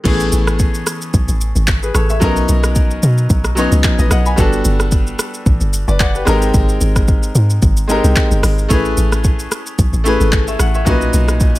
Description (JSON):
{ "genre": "amapiano", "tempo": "111 BPM", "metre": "4/4", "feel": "swing 55% on 16ths", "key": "A major", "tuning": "A4 = 437 Hz", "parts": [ { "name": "bright baby grand piano", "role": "accompaniment", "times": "0.0-11.6 s", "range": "A#2 to B5", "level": "-18 LUFS", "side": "left 1 dB", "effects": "none" }, { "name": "deep log drum bass", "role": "bass", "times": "0.1-11.6 s", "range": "F#1 to B2", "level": "-15 LUFS", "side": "equal", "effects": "none" }, { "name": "deep house drum kit", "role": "drums", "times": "0.1-11.6 s", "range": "crash cymbal, handclaps, hi-hat, kick drum, rim click, shaker", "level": "-16 LUFS", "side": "equal", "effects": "none" } ], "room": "little or no reverb", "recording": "none", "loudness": "-12 LUFS", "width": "side -17 dB against mid", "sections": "0.1-11.6 A section", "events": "drop 0.1-11.6", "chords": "0.1 Amaj9; 2.2 Bmaj9; 4.4 Gmaj9; 6.3 G#maj9; 8.7 Amaj9; 10.9 Bmaj9" }